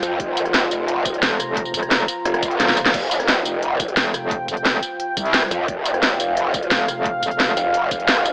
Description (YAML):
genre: dark technical drum and bass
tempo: 175 BPM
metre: 4/4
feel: straight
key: unclear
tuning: A4 = 440 Hz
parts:
  - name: deep dark ambient pad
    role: sustained chords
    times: 0.0-8.3 s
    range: F4 to Bb5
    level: -24 LUFS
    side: equal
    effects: chorus, built-in reverb, sidechain pumping
  - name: growl bass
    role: bass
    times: 0.0-8.3 s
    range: F1 to F2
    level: -21 LUFS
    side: equal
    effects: chorus, overdrive
  - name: drum and bass drum kit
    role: drums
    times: 0.0-8.3 s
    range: crash cymbal, hi-hat, rim click, snare drum, tambourine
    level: -19 LUFS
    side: equal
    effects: none
  - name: electronic kick drum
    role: drums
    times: 0.2-8.0 s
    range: none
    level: -32 LUFS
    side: equal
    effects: none
  - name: metallic wobble bass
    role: bass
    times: 1.2-7.6 s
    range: F1 to C2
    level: -22 LUFS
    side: equal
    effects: chorus
  - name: swell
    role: sound effects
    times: 2.5-2.9 s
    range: none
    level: -28 LUFS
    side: equal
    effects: none
room: moderate digital room reverb, RT60 1.0 s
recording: AM radio sound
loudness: -17 LUFS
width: side -33 dB against mid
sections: 0.0-8.3 A section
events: swell 2.5-2.9; drum fill 2.6-2.9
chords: 0.0 Fsus2